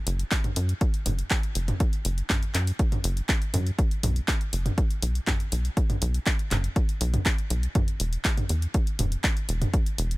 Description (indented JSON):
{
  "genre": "melodic techno",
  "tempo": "121 BPM",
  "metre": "4/4",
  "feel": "straight",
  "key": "unclear",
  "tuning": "A4 = 439 Hz",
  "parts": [
    { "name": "tight sequencer bass", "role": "bass", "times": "0.1-10.2 s", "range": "E1 to F#2", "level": "-25 LUFS", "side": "equal", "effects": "sidechain pumping" },
    { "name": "deep house drum kit", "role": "drums", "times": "0.1-10.2 s", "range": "handclaps, hi-hat, toms", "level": "-30 LUFS", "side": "equal", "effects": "none" },
    { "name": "electronic kick drum", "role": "drums", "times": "0.3-9.8 s", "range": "none", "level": "-25 LUFS", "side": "equal", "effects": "none" }
  ],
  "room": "little or no reverb",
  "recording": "none",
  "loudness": "-23 LUFS",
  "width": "side -20 dB against mid",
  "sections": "0.0-10.2 A section",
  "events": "none",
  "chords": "none"
}